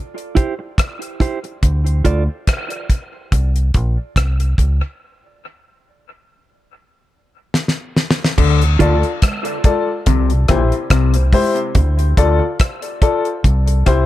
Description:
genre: dub reggae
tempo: 71 BPM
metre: 4/4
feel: swing 55% on 16ths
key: D minor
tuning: A4 = 440 Hz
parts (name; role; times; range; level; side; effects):
- damped 70s drum kit; drums; 0.2-14.1 s; crash cymbal, hi-hat, kick drum, rim click, snare drum; -16 LUFS; equal; none
- mellow electric guitar; accompaniment; 0.4-2.2, 8.8-9.0 s; E4 to D5; -24 LUFS; right 5 dB; dub echo
- deep dub fingered electric bass; bass; 1.6-14.1 s; Bb1 to D2; -15 LUFS; equal; none
- overdriven clav; riff; 8.4-11.2 s; Bb2 to D3; -22 LUFS; left 8 dB; dub echo
- congas; percussion; 8.4-12.0 s; none; -27 LUFS; right 4 dB; dub echo
- dark grand piano; stabs; 8.8-14.1 s; E4 to D5; -19 LUFS; left 4 dB; dub echo
room: light reverb, small room reverb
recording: none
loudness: -14 LUFS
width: side -14 dB against mid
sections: 0.0-8.4 A section; 8.4-14.1 B section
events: break 0.0-8.4; drum fill 7.5-8.4; part muted 11.8-14.1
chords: 0.0 C; 1.6 N.C.; 3.3 Bbmadd9; 5.0 N.C.; 8.4 Dm; 10.1 C; 11.8 Dm; 13.4 C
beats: 0.78 | 1.63 2.47 3.31 4.16 | 5.00 5.85 6.69 7.54 | 8.38 9.22 10.07 10.91 | 11.75 12.60 13.44

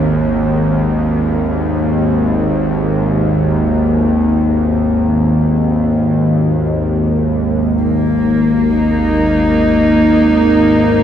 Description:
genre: dark ambient drone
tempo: free time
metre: none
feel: none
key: unclear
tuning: A4 = 437 Hz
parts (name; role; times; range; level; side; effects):
- bowed-like drone; drone; 0.0-11.0 s; G#1 to D#2; -13 LUFS; equal; built-in reverb
- dark chamber cello section; sustained chords; 7.8-11.0 s; A#3 to D#4; -12 LUFS; equal; shimmer reverb
room: wet cathedral reverb, RT60 5.0 s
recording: in a vast, echoing space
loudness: -11 LUFS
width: side -9 dB against mid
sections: 0.0-7.8 A section; 7.8-11.0 B section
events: none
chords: 0.0 G#5; 7.8 G#sus2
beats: free time

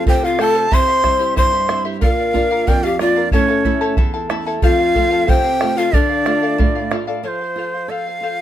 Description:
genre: andean folk, Andean ensemble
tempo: 92 BPM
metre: 2/4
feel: straight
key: unclear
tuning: A4 = 440 Hz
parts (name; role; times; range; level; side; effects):
- breathy bright large quena; melody; 0.0-8.4 s; C5 to C6; -18 LUFS; right 2 dB; none
- breathy large pan pipes; second line; 0.0-6.9 s; C#4 to C5; -20 LUFS; left 5 dB; none
- charango; accompaniment; 0.0-8.4 s; E4 to C6; -24 LUFS; left 6 dB; none
- flamenco guitar; accompaniment; 0.0-8.4 s; E2 to A4; -24 LUFS; right 7 dB; none
- bombo; percussion; 0.1-7.1 s; none; -18 LUFS; right 1 dB; none
room: little or no reverb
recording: close, detailed microphones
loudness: -14 LUFS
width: side -11 dB against mid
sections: 0.0-7.2 A section; 7.2-8.4 B section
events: none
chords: 0.0 F; 0.7 C; 2.0 Bb; 3.3 A; 4.6 F; 5.9 Dm; 7.2 F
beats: 0.06 | 0.71 1.37 | 2.02 2.67 | 3.33 3.98 | 4.63 5.28 | 5.94 6.59 | 7.25 7.90

